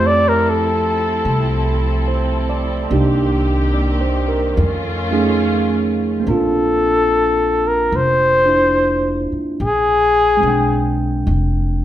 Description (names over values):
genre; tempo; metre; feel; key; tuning
jazz ballad; 72 BPM; 4/4; swing 67% on 8ths; unclear; A4 = 439 Hz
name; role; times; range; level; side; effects
mellow flugelhorn; melody; 0.0-11.0 s; G4 to D5; -15 LUFS; left 2 dB; none
tine electric piano; accompaniment; 0.0-11.8 s; Ab3 to G5; -20 LUFS; right 3 dB; none
muted studio string section; sustained chords; 0.0-6.2 s; Eb3 to A4; -24 LUFS; left 1 dB; none
upright bass; bass; 0.0-11.8 s; F1 to F2; -20 LUFS; equal; none
room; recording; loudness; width
moderate recital hall reverb, RT60 1.2 s; recorded in a church or concert hall; -14 LUFS; side -12 dB against mid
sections
0.0-6.3 A section; 6.3-11.8 B section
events
flugelhorn solo 0.0-6.3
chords
0.0 Fmaj7; 2.9 Cm7; 4.6 F7alt; 6.3 Bbmaj9; 9.6 Bb13